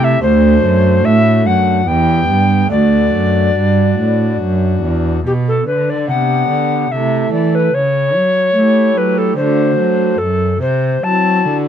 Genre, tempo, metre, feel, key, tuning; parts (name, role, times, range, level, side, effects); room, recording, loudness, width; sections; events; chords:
classical, baroque-style sonata movement with continuo; 73 BPM; 3/4; rubato; G major; A4 = 440 Hz
mellow alto recorder; melody; 0.0-11.6 s; G4 to A5; -16 LUFS; left 3 dB
pipe organ, foundations; accompaniment; 0.0-11.7 s; D2 to A4; -18 LUFS; right 2 dB
warm cello; bass; 0.0-11.7 s; D2 to A3; -15 LUFS; right 2 dB
light reverb; dark, warm production; -11 LUFS; side -9 dB against mid
0.0-5.3 A section; 5.3-11.7 B section
0.2 D7; 1.9 Em; 2.7 D; 5.3 G/B; 6.9 Am/C; 7.7 A7/C#; 9.4 D7; 10.2 F#m7b5